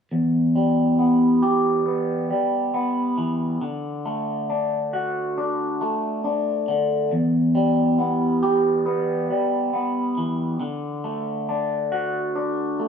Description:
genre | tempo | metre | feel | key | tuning
rock | 69 BPM | 4/4 | straight | E minor | A4 = 440 Hz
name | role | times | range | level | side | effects
electric guitar through a small old amp | arpeggios | 0.1-12.9 s | E2 to G4 | -20 LUFS | equal | phaser
room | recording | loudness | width
wet stone room reverb, RT60 1.2 s | band playing live in one room | -20 LUFS | side -7 dB against mid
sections
0.1-12.9 A section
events
none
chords
0.1 Em; 3.6 D; 7.1 Em; 10.6 D

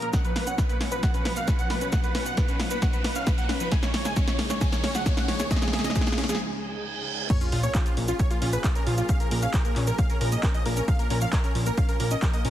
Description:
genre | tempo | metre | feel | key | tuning
uplifting trance | 134 BPM | 4/4 | straight | Bb phrygian | A4 = 441 Hz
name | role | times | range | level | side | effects
dense compressed supersaw | melody | 0.0-12.5 s | F4 to Ab5 | -33 LUFS | right 1 dB | sidechain pumping, low-pass filter, digital delay
supersaw stab | second line | 0.0-12.5 s | F4 to Ab5 | -36 LUFS | equal | sidechain pumping
dark chamber string section | sustained chords | 0.0-12.5 s | Db2 to F#5 | -37 LUFS | right 1 dB | sidechain pumping
wide unison pluck | arpeggios | 0.0-12.5 s | F3 to Db4 | -35 LUFS | moving between left 5 dB and right 2 dB | auto-pan, sidechain pumping, digital delay
punchy analog drum machine | drums | 0.0-12.5 s | crash cymbal, handclaps, hi-hat, shaker, snare drum | -31 LUFS | equal | sidechain pumping on hats, sidechain pumping on perc, sidechain pumping on cymbals
riser, reverse cymbal and sub drop | sound effects | 0.0-9.1 s | none | -37 LUFS | right 1 dB | none
electronic kick drum | drums | 0.1-12.3 s | none | -25 LUFS | equal | none
fat analog bass | bass | 7.5-12.5 s | Bb1 | -26 LUFS | equal | sidechain pumping
room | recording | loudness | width
light reverb, digital ambience | heavily compressed radio sound, multiband compression | -23 LUFS | side -12 dB against mid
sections
0.0-7.3 A section; 7.3-12.5 B section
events
build-up 0.0-7.3; drum fill 0.0-6.4; riser 0.0-6.4; break 6.4-7.3; reverse cymbal 6.4-7.3; drop 7.3-12.5; impact 7.3-9.1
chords
0.1 B; 3.7 Dbsus2; 7.3 Bbm7

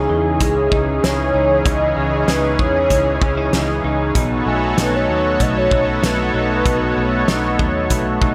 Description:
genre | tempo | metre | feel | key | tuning
dream pop | 96 BPM | 4/4 | straight | C# minor | A4 = 438 Hz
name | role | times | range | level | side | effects
hollow clarinet-like synth lead | melody | 0.0-7.2 s | G#4 to D#5 | -23 LUFS | equal | chorus, digital delay
lush unison pad | sustained chords | 0.0-8.3 s | C#3 to C#5 | -23 LUFS | equal | chorus
electric guitar through a small old amp | arpeggios | 0.0-8.3 s | B2 to D#4 | -24 LUFS | equal | analog chorus, digital delay
vintage muted fingered electric bass | bass | 0.0-8.3 s | B1 to E2 | -26 LUFS | equal | none
large celesta | texture | 0.0-0.6, 4.5-5.2 s | G#5 | -32 LUFS | equal | digital delay
loose indie drum kit | drums | 0.4-8.3 s | hi-hat, kick drum, snare drum | -23 LUFS | equal | none
room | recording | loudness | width
moderate plate reverb, RT60 1.4 s | none | -17 LUFS | mono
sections
0.0-8.3 A section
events
none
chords
0.0 C#madd9; 4.2 B7

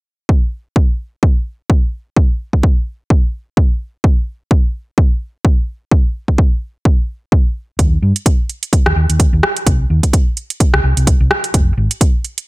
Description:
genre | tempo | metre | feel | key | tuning
piano house | 128 BPM | 4/4 | swing 57% on 16ths | unclear | A4 = 440 Hz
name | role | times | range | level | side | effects
electronic kick drum | drums | 0.3-12.1 s | none | -12 LUFS | equal | none
hollow-body short-scale fingered electric bass | bass | 7.8-11.9 s | F1 to G2 | -14 LUFS | equal | sidechain pumping
house drum kit | drums | 7.8-12.5 s | hi-hat, rim click | -18 LUFS | right 1 dB | none
room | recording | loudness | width
little or no reverb | none | -13 LUFS | side -21 dB against mid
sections
0.3-12.5 A section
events
none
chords
none

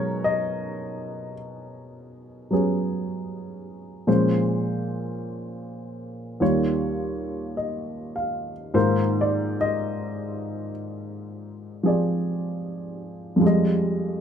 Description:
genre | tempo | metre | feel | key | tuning
jazz ballad | 51 BPM | 4/4 | swing 66% on 8ths | unclear | A4 = 440 Hz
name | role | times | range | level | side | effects
warm baby grand piano | solo | 0.0-14.2 s | Eb2 to F5 | -23 LUFS | equal | none
room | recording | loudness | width
moderate studio ambience, RT60 0.4 s | band playing live in one room | -22 LUFS | side -8 dB against mid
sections
0.0-14.2 A section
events
none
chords
0.0 Bmaj13; 4.1 Bbm7; 6.4 Eb9; 8.8 Ab6; 13.4 Fm9

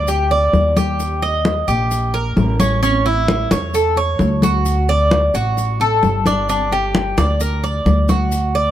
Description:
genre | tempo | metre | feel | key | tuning
latin, Cuban son and guajira | 131 BPM | 4/4 | straight | G harmonic minor | A4 = 440 Hz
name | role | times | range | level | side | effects
Cuban tres | arpeggios | 0.0-8.7 s | C#4 to Eb5 | -18 LUFS | right 1 dB | none
upright bass | bass | 0.0-8.7 s | G1 to E2 | -19 LUFS | equal | none
congas | percussion | 0.1-8.7 s | none | -20 LUFS | left 2 dB | none
maracas | percussion | 0.1-8.7 s | none | -34 LUFS | left 4 dB | none
room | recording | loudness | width
light reverb | none | -14 LUFS | side -11 dB against mid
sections
0.0-8.7 A section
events
none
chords
0.0 G5; 1.0 Eb; 2.8 A; 4.7 D; 6.5 Gm

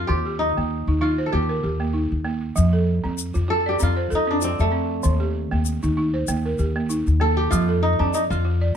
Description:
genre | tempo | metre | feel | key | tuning
west african traditional, West African string and xylophone music | 97 BPM | 4/4 | swing 54% on 16ths | F mixolydian | A4 = 441 Hz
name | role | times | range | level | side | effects
kora | melody | 0.0-8.8 s | A3 to A4 | -24 LUFS | left 1 dB | slapback echo
balafon | arpeggios | 0.0-8.8 s | Eb3 to D5 | -25 LUFS | right 3 dB | none
upright bass | bass | 0.0-8.7 s | Eb2 to F2 | -22 LUFS | left 1 dB | none
egg shaker | percussion | 2.6-8.4 s | none | -33 LUFS | left 9 dB | none
room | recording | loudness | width
light reverb | dark, warm production | -19 LUFS | side -8 dB against mid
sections
0.0-2.6 A section; 2.6-8.8 B section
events
kora solo 2.6-8.8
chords
0.1 Eb; 2.6 F; 5.0 Eb; 7.5 F

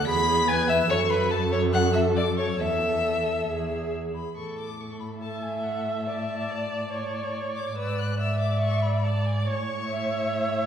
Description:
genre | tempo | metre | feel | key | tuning
quick classical-period movement for string quartet | 142 BPM | 4/4 | straight | A major | A4 = 440 Hz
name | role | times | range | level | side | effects
rich violin | melody | 0.0-10.7 s | E5 to B6 | -33 LUFS | left 5 dB | none
rich viola | accompaniment | 0.0-10.7 s | G#4 to E5 | -29 LUFS | right 2 dB | none
warm cello | bass | 0.0-10.7 s | E2 to A2 | -28 LUFS | right 1 dB | none
rich violin | second line | 0.1-10.7 s | A4 to B5 | -29 LUFS | left 2 dB | none
room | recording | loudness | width
wet recital hall reverb, RT60 1.8 s | heard from further back in the room | -23 LUFS | side -8 dB against mid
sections
0.0-4.4 A section; 4.4-10.7 B section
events
none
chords
0.1 E; 0.9 F#m; 2.6 Esus4; 3.5 E; 4.4 A5; 6.1 D5/A; 7.8 E7/G#; 9.5 A

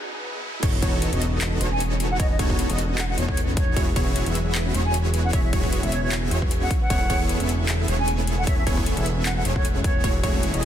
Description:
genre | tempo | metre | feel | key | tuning
future bass | 153 BPM | 4/4 | swing 55% on 16ths, half-time | unclear | A4 = 440 Hz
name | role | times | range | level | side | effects
thumb-piano-like synth pluck | arpeggios | 0.0-10.7 s | C#4 to B4 | -36 LUFS | right 3 dB | chorus, sidechain pumping, ping-pong delay
riser, swell and sub drop | sound effects | 0.0-2.2 s | none | -33 LUFS | equal | none
airy breathy pad | sustained chords | 0.6-10.7 s | C#3 to G#5 | -34 LUFS | equal | chorus, phaser, sidechain pumping
wide unison pluck | arpeggios | 0.6-10.7 s | C#5 to E5 | -35 LUFS | equal | sidechain pumping, ping-pong delay
supersaw chords | riff | 0.6-10.7 s | A3 to E5 | -29 LUFS | equal | sidechain pumping
fat analog bass | bass | 0.6-10.7 s | E1 | -25 LUFS | equal | sidechain pumping
dubstep drum kit | drums | 0.6-10.7 s | crash cymbal, handclaps, hi-hat | -31 LUFS | left 2 dB | overdrive, high-pass filter on snare, high-pass filter on hats, high-pass filter on cymbals, high-pass filter on room
electronic kick drum | drums | 0.6-10.3 s | none | -23 LUFS | equal | overdrive
wooden flute | melody | 1.7-10.1 s | C#5 to G#5 | -31 LUFS | equal | sidechain pumping, ping-pong delay
room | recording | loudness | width
light reverb, digital ambience | dense, heavily limited modern master, high-pass filter | -20 LUFS | side -10 dB against mid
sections
0.6-10.7 A section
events
break 0.0-0.6; riser 0.0-0.6; swell 0.0-0.6; drop 0.6-10.7; impact 0.6-2.2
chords
0.4 N.C.; 0.6 B9/E; 3.8 E69; 6.7 Amaj9/E; 10.0 F#m9/E

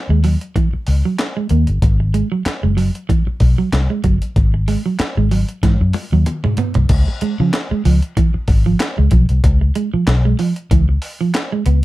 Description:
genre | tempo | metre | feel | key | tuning
funk | 94 BPM | 4/4 | swing 56% on 16ths | Db mixolydian | A4 = 440 Hz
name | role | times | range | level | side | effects
electric guitar at the edge of break-up | riff | 0.1-11.8 s | Fb3 to B3 | -19 LUFS | right 5 dB | none
vintage muted fingered electric bass | bass | 0.1-11.8 s | Gb1 to Db3 | -14 LUFS | left 1 dB | none
breakbeat sampler-style drum kit | drums | 0.2-11.8 s | crash cymbal, handclaps, hi-hat, kick drum, snare drum, toms | -18 LUFS | equal | none
room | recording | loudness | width
little or no reverb | dark, warm production | -14 LUFS | side -17 dB against mid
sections
0.0-6.9 A section; 6.9-11.8 B section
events
drum fill 5.6-6.9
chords
0.0 Ebm7; 1.8 Ab7(no3); 6.9 Db7

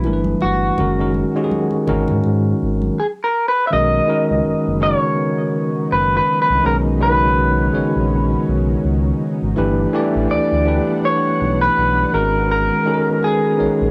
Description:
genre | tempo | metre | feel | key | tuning
R&B, neo-soul | 82 BPM | 4/4 | swing 57% on 16ths | B major | A4 = 441 Hz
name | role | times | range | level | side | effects
electric guitar through a small old amp | melody | 0.0-13.9 s | E4 to E5 | -21 LUFS | equal | cassette tape
bell-like tine electric piano | accompaniment | 0.0-13.9 s | C#3 to D5 | -21 LUFS | equal | none
smooth gliding synth bass | bass | 0.0-13.9 s | F#1 to G#2 | -23 LUFS | equal | none
congas | percussion | 0.0-3.0 s | none | -29 LUFS | equal | none
lush unison pad | sustained chords | 3.7-13.9 s | F#3 to F#5 | -33 LUFS | equal | chorus
room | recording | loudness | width
light reverb | home recording on cassette | -17 LUFS | mono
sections
0.0-3.7 A section; 3.7-13.9 B section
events
none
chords
0.0 Gadd9; 0.8 F#add9; 1.9 G#sus2; 3.0 N.C.; 3.7 Bmaj7; 9.6 Gmaj7; 12.1 G#m9

